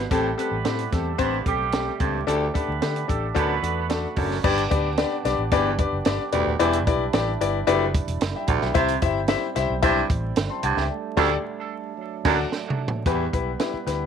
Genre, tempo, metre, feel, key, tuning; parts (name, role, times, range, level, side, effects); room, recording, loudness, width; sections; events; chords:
uptempo 1960s-style soul; 111 BPM; 4/4; straight; G major; A4 = 441 Hz
tonewheel organ; sustained chords; 0.0-14.1 s; F#3 to G4; -33 LUFS; right 10 dB; overdrive, lush chorus
raspy baritone saxophone; riff; 0.0-13.3 s; D2 to C3; -26 LUFS; right 10 dB
vintage muted fingered electric bass; bass; 0.0-14.1 s; Eb1 to D3; -28 LUFS; equal
clear concert grand piano; accompaniment; 0.1-14.0 s; C4 to C6; -24 LUFS; left 9 dB
compact cocktail drum kit; drums; 0.1-14.0 s; crash cymbal, hi-hat, kick drum, snare drum, toms; -26 LUFS; right 2 dB
mellow horn section; second line; 0.4-3.9, 11.2-12.4 s; F#3 to B4; -30 LUFS; right 11 dB; tape echo
light reverb, studio ambience; 1960s-style stereo with parts hard left and right, vinyl crackle; -21 LUFS; side -7 dB against mid
0.0-4.4 A section; 4.4-13.1 B section; 13.1-14.1 C section
band accent 10.9-13.1; drum fill 12.5-13.1
0.1 Am7; 2.3 Dsus4; 3.4 D; 4.4 G; 6.6 Em7; 8.8 C; 10.9 Dsus4; 12.0 D; 13.1 Em